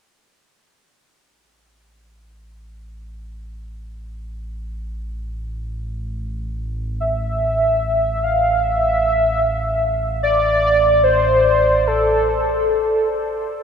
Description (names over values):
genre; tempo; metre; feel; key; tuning
ambient; free time; none; none; A minor; A4 = 440 Hz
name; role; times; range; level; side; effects
deep rumbling drone; bass; 2.6-13.6 s; A1; -26 LUFS; right 1 dB; built-in reverb
warm velvety synth lead; melody; 7.0-13.1 s; A4 to F5; -16 LUFS; equal; chorus, tape echo
room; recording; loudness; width
wet huge ambient reverb, RT60 8.2 s; none; -16 LUFS; side -7 dB against mid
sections
0.5-13.5 A section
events
fade-in on synth drone 0.5-13.5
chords
none